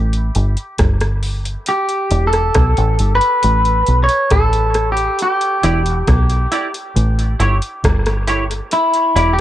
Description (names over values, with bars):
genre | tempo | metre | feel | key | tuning
dub reggae | 68 BPM | 4/4 | straight | E dorian | A4 = 439 Hz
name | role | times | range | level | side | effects
deep dub fingered electric bass | bass | 0.0-9.4 s | E1 to B1 | -15 LUFS | equal | none
soft vintage rhythm box | drums | 0.1-9.4 s | hi-hat, kick drum, rim click | -19 LUFS | equal | cassette tape
clean electric guitar | melody | 1.7-9.4 s | E4 to C#5 | -17 LUFS | equal | dub echo
semi-hollow electric guitar | accompaniment | 5.6-9.3 s | E4 to D5 | -22 LUFS | right 2 dB | analog chorus, cassette tape, dub echo
room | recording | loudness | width
light reverb | home recording on cassette | -13 LUFS | side -13 dB against mid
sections
0.0-9.4 A section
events
break 0.0-5.2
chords
0.0 Gsus2; 1.7 Em; 3.4 Asus2; 5.2 Em7; 7.0 A7; 8.7 Em7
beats
0.80 | 1.68 2.56 3.44 4.32 | 5.20 6.08 6.96 7.83 | 8.71